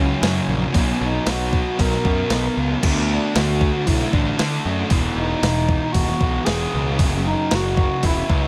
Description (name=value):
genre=rock, shoegaze and dream pop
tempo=115 BPM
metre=4/4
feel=straight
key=unclear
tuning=A4 = 440 Hz
part: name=reedy FM lead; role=melody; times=0.0-8.5 s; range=C#4 to A#4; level=-28 LUFS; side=equal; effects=chorus, tremolo, delay
part: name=thick fuzz guitar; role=riff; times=0.0-8.5 s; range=E2 to D4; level=-26 LUFS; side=equal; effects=distortion, subtle chorus
part: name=fuzz picked electric bass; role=bass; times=0.0-8.5 s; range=E1 to D3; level=-25 LUFS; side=equal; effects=overdrive
part: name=crisp 8-bit digital drum machine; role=drums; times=0.2-8.4 s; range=crash cymbal, hi-hat, kick drum, snare drum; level=-24 LUFS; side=equal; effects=none
room=moderate huge ambient reverb, RT60 4.5 s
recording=dreamy mix soaked in reverb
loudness=-20 LUFS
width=mono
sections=0.0-8.5 A section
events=none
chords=0.0 F#; 0.7 B5; 2.8 D; 4.9 E5; 7.0 F#5